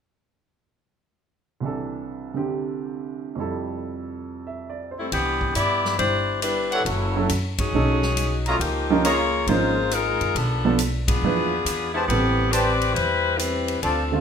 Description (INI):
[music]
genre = jazz, big band swing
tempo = 138 BPM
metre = 4/4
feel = swing 66% on 8ths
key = C major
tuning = A4 = 441 Hz
[part]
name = clear concert grand piano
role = accompaniment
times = 1.6-14.2 s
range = C2 to E5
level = -25 LUFS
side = right 5 dB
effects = none
[part]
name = clear saxophone section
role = melody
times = 5.0-14.2 s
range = E3 to D5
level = -23 LUFS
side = left 3 dB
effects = none
[part]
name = upright bass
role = bass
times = 5.1-14.2 s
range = F#1 to G2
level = -26 LUFS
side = equal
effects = none
[part]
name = swinging big-band drum kit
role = drums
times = 5.1-14.0 s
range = hi-hat, kick drum, ride cymbal, snare drum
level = -30 LUFS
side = left 1 dB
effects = none
[part]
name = warm trumpet section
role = stabs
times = 6.7-9.2, 11.9-14.0 s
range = E4 to Bb5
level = -26 LUFS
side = equal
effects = none
[sound]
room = moderate large studio reverb, RT60 1.1 s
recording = minimal, uncompressed stereo recording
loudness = -20 LUFS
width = side -7 dB against mid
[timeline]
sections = 1.6-5.1 A section; 5.1-14.2 B section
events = band accent 7.5, 11.0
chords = 1.6 C6; 3.4 Fmaj9; 5.1 Cmaj9; 6.9 F#m7; 7.7 B9; 8.6 Db69; 10.4 Bm7b5; 11.2 E7b9; 12.1 Am9